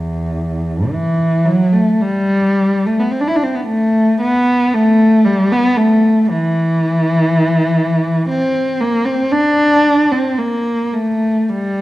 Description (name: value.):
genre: classical, free, expressive piece for unaccompanied cello.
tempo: 53-61 BPM.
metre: 4/4.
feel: rubato.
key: E minor.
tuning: A4 = 440 Hz.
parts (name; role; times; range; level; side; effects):
dark cello; solo; 0.0-11.8 s; E2 to E4; -12 LUFS; equal; none.
room: wet scoring stage reverb, RT60 1.6 s.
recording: dark, warm production.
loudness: -12 LUFS.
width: side -16 dB against mid.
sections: 0.0-11.8 A section.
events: none.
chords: none.